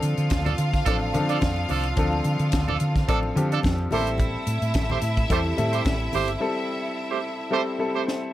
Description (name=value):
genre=disco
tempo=108 BPM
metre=4/4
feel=straight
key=unclear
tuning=A4 = 442 Hz
part: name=bright studio string section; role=second line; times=0.0-8.0 s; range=E4 to F5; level=-31 LUFS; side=right 1 dB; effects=tape echo
part: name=clear concert grand piano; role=accompaniment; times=0.0-8.3 s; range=F3 to E5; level=-28 LUFS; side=left 2 dB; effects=none
part: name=hollow-body short-scale fingered electric bass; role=bass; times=0.0-6.4 s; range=G1 to D3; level=-26 LUFS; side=equal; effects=none
part: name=tight funk drum kit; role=drums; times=0.0-8.2 s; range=hi-hat, kick drum, snare drum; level=-26 LUFS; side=equal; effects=none
part: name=congas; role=percussion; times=0.3-6.3 s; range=none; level=-34 LUFS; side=left 3 dB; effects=none
part: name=clear horn section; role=stabs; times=0.5-8.0 s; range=F3 to C5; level=-29 LUFS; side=right 8 dB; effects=none
room=light reverb, small room ambience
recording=none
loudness=-22 LUFS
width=side -14 dB against mid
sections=0.0-8.3 A section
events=break 6.4-8.3; grand piano fill 7.5-8.3; drum fill 8.1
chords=0.0 Dm7; 3.9 Am7